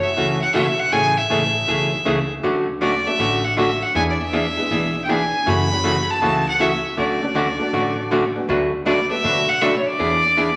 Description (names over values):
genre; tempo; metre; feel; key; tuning
country; 159 BPM; 4/4; swing 66% on 8ths; unclear; A4 = 440 Hz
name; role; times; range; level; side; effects
clear fiddle; melody; 0.0-10.6 s; C#5 to B5; -22 LUFS; equal; none
tack piano; accompaniment; 0.0-9.2 s; G#3 to A4; -32 LUFS; equal; none
archtop guitar, miked and amplified; accompaniment; 0.2-10.5 s; C#3 to B4; -23 LUFS; equal; none
upright bass; bass; 0.2-10.6 s; A1 to B2; -33 LUFS; equal; none
room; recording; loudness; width
wet large studio reverb, RT60 1.4 s; none; -19 LUFS; mono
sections
0.0-10.6 A section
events
none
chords
0.0 F#m7; 0.9 Amaj7; 2.4 Dmaj7; 4.0 E7; 5.5 F#m9; 7.0 Dmaj7; 8.5 Bm7/D; 10.0 E7